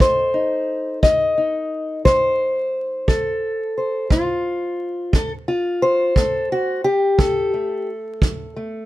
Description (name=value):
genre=acoustic country blues, solo or duo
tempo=58 BPM (dotted quarters)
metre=12/8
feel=straight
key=unclear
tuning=A4 = 440 Hz
part: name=fingerpicked steel-string acoustic guitar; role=melody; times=0.0-8.9 s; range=F2 to Eb5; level=-18 LUFS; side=left 1 dB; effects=none
part: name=kick drum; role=drums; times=0.0-8.4 s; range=none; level=-19 LUFS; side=right 1 dB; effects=none
room=little or no reverb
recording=close, detailed microphones, vinyl crackle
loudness=-18 LUFS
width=side -16 dB against mid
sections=0.0-8.9 A section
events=none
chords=0.0 F7